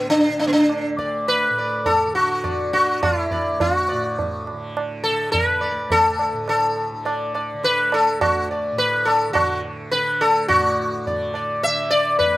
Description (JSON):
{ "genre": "indian classical, Hindustani", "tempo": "104 BPM", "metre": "3/4", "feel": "straight", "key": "D raga bhupali", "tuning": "A4 = 440 Hz", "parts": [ { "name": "sitar", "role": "melody", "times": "0.0-12.4 s", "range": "B3 to E5", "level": "-18 LUFS", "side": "left 1 dB", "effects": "slapback echo" }, { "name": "tanpura", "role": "drone", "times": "0.0-12.4 s", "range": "D2 to D3", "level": "-32 LUFS", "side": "right 2 dB", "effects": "none" }, { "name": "tabla", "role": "percussion", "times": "0.1-12.4 s", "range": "none", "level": "-27 LUFS", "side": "right 3 dB", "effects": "slapback echo" } ], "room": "little or no reverb", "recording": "recorded outdoors, with no room sound", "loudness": "-18 LUFS", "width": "side -17 dB against mid", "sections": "0.0-10.5 A section; 10.5-12.4 B section", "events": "none", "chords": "none", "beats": "| 0.11 0.69 1.27 | 1.86 2.44 3.02 | 3.60 4.17 4.75 | 5.33 5.91 6.48 | 7.06 7.63 8.21 | 8.78 9.35 9.93 | 10.50 11.07 11.64 | 12.21" }